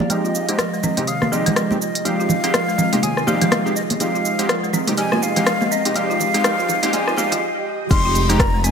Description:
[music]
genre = afro house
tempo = 123 BPM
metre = 4/4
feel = swing 59% on 16ths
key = F minor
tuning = A4 = 440 Hz
[part]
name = breathy hollow jazz flute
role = melody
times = 0.0-8.7 s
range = D5 to C6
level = -23 LUFS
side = left 2 dB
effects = ping-pong delay
[part]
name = ethereal airy pad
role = sustained chords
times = 0.0-8.7 s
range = F3 to F5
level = -28 LUFS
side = left 1 dB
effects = ensemble chorus, built-in reverb, phaser, sidechain pumping
[part]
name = warm analog keys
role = stabs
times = 0.0-8.4 s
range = Ab3 to G4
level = -24 LUFS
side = right 1 dB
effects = chorus, sidechain pumping, low-pass filter, ping-pong delay
[part]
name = deep house drum kit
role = drums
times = 0.0-8.7 s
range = crash cymbal, hi-hat, rim click, shaker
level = -23 LUFS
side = equal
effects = low-pass filter on perc, low-pass filter on hats, low-pass filter on snare, low-pass filter on cymbals, low-pass filter on room
[part]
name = congas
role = percussion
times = 0.0-7.4 s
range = none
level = -24 LUFS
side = right 2 dB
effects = none
[part]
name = folk marimba with hard mallets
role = arpeggios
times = 0.1-8.7 s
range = C3 to F4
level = -25 LUFS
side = right 1 dB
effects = sidechain pumping, low-pass filter, ping-pong delay
[part]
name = smooth gliding synth bass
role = bass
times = 7.9-8.7 s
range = F1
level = -20 LUFS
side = left 1 dB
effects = sidechain pumping
[part]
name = electronic kick drum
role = drums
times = 7.9-8.5 s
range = none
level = -18 LUFS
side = left 1 dB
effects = none
[sound]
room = moderate lush hall reverb, RT60 1.7 s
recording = high-pass filter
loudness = -16 LUFS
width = side -6 dB against mid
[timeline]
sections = 0.1-7.9 A section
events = build-up 0.1-7.9; filter sweep on marimba 0.1-7.9; filter sweep on synth keys 0.1-7.9; filter sweep on ambient pad 0.1-7.9; filter sweep 0.1-7.9; break 7.4-7.9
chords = 0.1 Fm7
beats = | 0.10 0.59 1.08 1.56 | 2.05 2.54 3.03 3.52 | 4.00 4.49 4.98 5.47 | 5.95 6.44 6.93 7.42 | 7.91 8.39

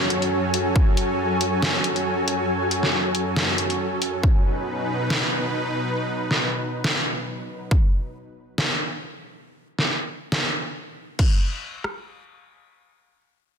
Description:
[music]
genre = heavy wobble dubstep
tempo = 138 BPM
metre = 4/4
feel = swing 54% on 16ths, half-time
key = unclear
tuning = A4 = 440 Hz
[part]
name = supersaw pad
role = sustained chords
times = 0.0-7.7 s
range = F#2 to B4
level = -27 LUFS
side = equal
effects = sidechain pumping
[part]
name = downlifter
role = sound effects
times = 0.0-0.8 s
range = none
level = barely audible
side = none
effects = none
[part]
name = granular cloud pad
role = texture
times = 0.0-4.2 s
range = F#4 to G#5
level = -26 LUFS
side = equal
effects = built-in reverb, sidechain pumping
[part]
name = dubstep drum kit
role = drums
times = 0.1-11.3 s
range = crash cymbal, hi-hat, snare drum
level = -24 LUFS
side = equal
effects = none
[part]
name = dubstep drum kit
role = drums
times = 0.8, 4.2-4.3, 7.7-7.8, 11.2-12.0 s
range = kick drum, rim click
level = -19 LUFS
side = equal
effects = soft clipping on snare
[sound]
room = moderate lush hall reverb, RT60 1.8 s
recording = dense, heavily limited modern master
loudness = -21 LUFS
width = side -7 dB against mid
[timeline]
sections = 0.0-11.2 A section; 11.2-13.6 B section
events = none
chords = 0.0 F#m; 4.2 B; 7.7 N.C.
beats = 0.32 | 0.76 1.19 1.62 2.06 | 2.50 2.93 3.37 3.80 | 4.23 4.67 5.10 5.54 | 5.97 6.41 6.84 7.28 | 7.71 8.15 8.58 9.02 | 9.45 9.89 10.32 10.76 | 11.19 11.62

